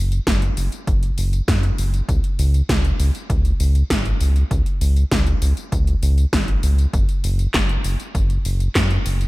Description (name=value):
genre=synthwave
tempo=99 BPM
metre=4/4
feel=straight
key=unclear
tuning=A4 = 439 Hz
part: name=round analog bass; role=bass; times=0.0-9.3 s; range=F#1 to F#2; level=-18 LUFS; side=equal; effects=tube saturation, sidechain pumping
part: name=80s electronic pad drums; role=drums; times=0.1-9.3 s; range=handclaps, hi-hat, snare drum, tambourine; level=-25 LUFS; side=equal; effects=overdrive
part: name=electronic kick drum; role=drums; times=0.3-8.9 s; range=none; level=-22 LUFS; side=equal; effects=overdrive
room=little or no reverb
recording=none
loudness=-17 LUFS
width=side -20 dB against mid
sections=0.0-9.3 A section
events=none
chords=none